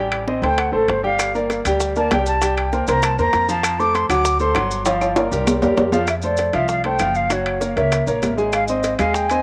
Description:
Afro-Cuban jazz; 196 BPM; 4/4; straight; F major; A4 = 440 Hz
clear baby grand piano; accompaniment; 0.0-9.4 s; F3 to Ab5; -23 LUFS; equal; cassette tape
upright bass; bass; 0.0-9.4 s; Gb1 to F2; -28 LUFS; equal
bongos; percussion; 0.1-9.4 s; -33 LUFS; equal
claves; percussion; 0.1-9.1 s; -35 LUFS; equal
timbales; percussion; 0.1-9.4 s; -25 LUFS; equal
silver concert flute; melody; 0.4-9.4 s; A4 to D6; -24 LUFS; equal; cassette tape, tape echo
maracas; percussion; 1.2-9.4 s; -34 LUFS; equal
moderate spring reverb, RT60 2.2 s; home recording on cassette; -19 LUFS; mono
0.0-6.1 A section; 6.1-9.4 B section
flute solo 0.0-6.1; drum fill 4.9-6.1
0.0 Am7b5; 0.6 D5; 1.2 Gm; 2.4 C7(no3); 3.6 F6; 4.2 D7; 4.9 Gm7; 5.5 C7; 6.1 F69; 7.3 Gb9; 8.5 Ab

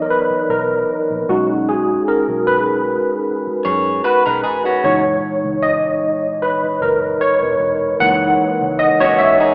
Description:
lush 1970s-style soul; 76 BPM; 4/4; swing 54% on 16ths; A4 = 440 Hz
barky tine electric piano; accompaniment; 0.0-9.5 s; A#2 to F#5; -17 LUFS; equal; overdrive, ensemble chorus
vintage muted fingered electric bass; bass; 0.3-9.3 s; E1 to F#2; -34 LUFS; equal
electric guitar through a small old amp; riff; 3.6-9.5 s; C#4 to C#5; -21 LUFS; equal
light reverb; rough home demo mix, small speaker sound; -17 LUFS; mono
0.0-9.5 A section
tine electric piano solo 0.0-9.5
0.0 C#m11; 1.3 B69

